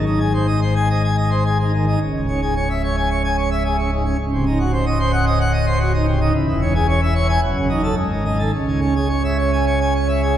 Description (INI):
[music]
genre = classical, organ toccata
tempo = 109 BPM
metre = 4/4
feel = straight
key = C# minor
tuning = A4 = 440 Hz
[part]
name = pipe organ, plenum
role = solo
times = 0.0-10.4 s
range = C#1 to G#5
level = -16 LUFS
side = equal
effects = none
[sound]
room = wet church reverb, RT60 2.5 s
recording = heard from further back in the room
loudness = -16 LUFS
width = side -11 dB against mid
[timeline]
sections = 0.0-10.4 A section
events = none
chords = 0.0 G#; 2.0 C#m; 4.2 Cdim/C#; 6.3 C#m/E; 7.4 D#m7b5/F#; 8.0 G#5; 8.5 C#m